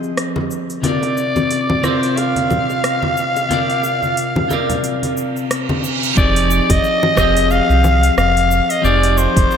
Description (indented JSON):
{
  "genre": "sunset chillout",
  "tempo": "90 BPM",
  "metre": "4/4",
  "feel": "swing 57% on 16ths",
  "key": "F dorian",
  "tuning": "A4 = 440 Hz",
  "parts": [
    { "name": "clean electric guitar", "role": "accompaniment", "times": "0.0-9.6 s", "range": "C3 to Eb5", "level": "-19 LUFS", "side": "equal", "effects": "auto-pan, low-pass filter, analog delay" },
    { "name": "smooth R&B drum kit", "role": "drums", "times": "0.0-9.6 s", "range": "cabasa, congas, hi-hat, rim click", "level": "-24 LUFS", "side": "left 1 dB", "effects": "none" },
    { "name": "bongos and congas", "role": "percussion", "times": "0.4-5.8 s", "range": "none", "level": "-25 LUFS", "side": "left 1 dB", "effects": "none" },
    { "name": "raspy soprano saxophone", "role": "melody", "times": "0.8-9.6 s", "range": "C5 to F5", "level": "-18 LUFS", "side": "left 1 dB", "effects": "analog delay" },
    { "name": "reverse cymbal", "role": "sound effects", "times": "5.4-6.2 s", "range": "none", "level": "-25 LUFS", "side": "right 7 dB", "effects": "none" },
    { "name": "round analog bass", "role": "bass", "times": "6.2-9.5 s", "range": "F1 to C2", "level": "-16 LUFS", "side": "right 1 dB", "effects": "none" },
    { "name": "electronic kick drum", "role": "drums", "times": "6.2-9.5 s", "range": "none", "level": "-17 LUFS", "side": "right 1 dB", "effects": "overdrive" }
  ],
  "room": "wet plate reverb, RT60 3.5 s",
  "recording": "dreamy mix soaked in reverb",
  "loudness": "-14 LUFS",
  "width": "side -8 dB against mid",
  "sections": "0.0-6.2 A section; 6.2-9.6 B section",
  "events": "filter sweep on drum 0.0-6.2; reverse cymbal 5.4-6.2",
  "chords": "0.0 Fm7; 0.8 C7sus4; 6.2 Fm7",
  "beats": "0.17 | 0.84 1.51 2.17 2.84 | 3.51 4.17 4.84 5.51 | 6.17 6.84 7.51 8.17 | 8.84 9.51"
}